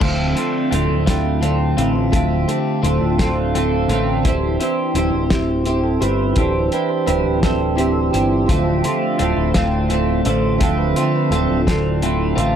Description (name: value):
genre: psychedelic rock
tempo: 57 BPM (dotted quarters)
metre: 6/8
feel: straight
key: D minor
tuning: A4 = 439 Hz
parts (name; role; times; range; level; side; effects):
- tonewheel organ; sustained chords; 0.0-12.6 s; E3 to E5; -24 LUFS; right 6 dB; stopped rotary speaker
- twelve-string electric guitar; riff; 0.0-12.6 s; D3 to C5; -18 LUFS; equal; phaser, double-tracked left and right
- growling picked electric bass; bass; 0.0-12.6 s; D1 to A1; -21 LUFS; left 1 dB; overdrive
- cloth-damped thuddy drum kit; drums; 0.0-12.5 s; crash cymbal, hi-hat, kick drum, snare drum; -21 LUFS; left 1 dB; none
room: light reverb, small room ambience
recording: none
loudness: -16 LUFS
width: side -8 dB against mid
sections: 0.0-12.6 A section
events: tonewheel organ solo 0.0-12.6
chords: 0.0 Dm7; 4.3 Cadd9/D; 8.5 Dm7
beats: | 0.01 1.07 | 2.13 3.19 | 4.25 5.31 | 6.37 7.43 | 8.49 9.55 | 10.61 11.67